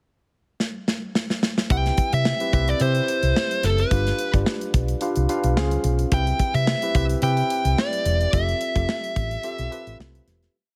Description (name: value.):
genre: polished 1980s jazz-funk pop.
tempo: 109 BPM.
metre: 4/4.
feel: swing 54% on 16ths.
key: C major.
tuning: A4 = 441 Hz.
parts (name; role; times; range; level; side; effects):
modern studio drum kit; drums; 0.6-10.5 s; hi-hat, kick drum, snare drum; -27 LUFS; equal; none.
high-gain lead guitar; melody; 1.7-10.0 s; A4 to G5; -27 LUFS; equal; distortion.
tine electric piano; accompaniment; 1.7-10.6 s; C4 to F5; -30 LUFS; equal; subtle chorus.
hollow-body short-scale fingered electric bass; bass; 1.7-10.5 s; E1 to C3; -25 LUFS; equal; none.
room: studio reverb.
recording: none.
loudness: -22 LUFS.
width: mono.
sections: 0.0-1.7 pickup bar; 1.7-10.5 verse.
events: drum fill 0.6-1.7; fade-out 8.3-10.5.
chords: 0.0 N.C.; 1.7 Cmaj7; 3.9 G7; 5.6 Dbmaj7; 6.1 Cmaj7; 8.3 Fmaj9.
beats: 0.04 0.60 1.15 | 1.70 2.26 2.81 3.36 | 3.91 4.46 5.02 5.57 | 6.12 6.67 7.22 7.78 | 8.33 8.88 9.44 9.99.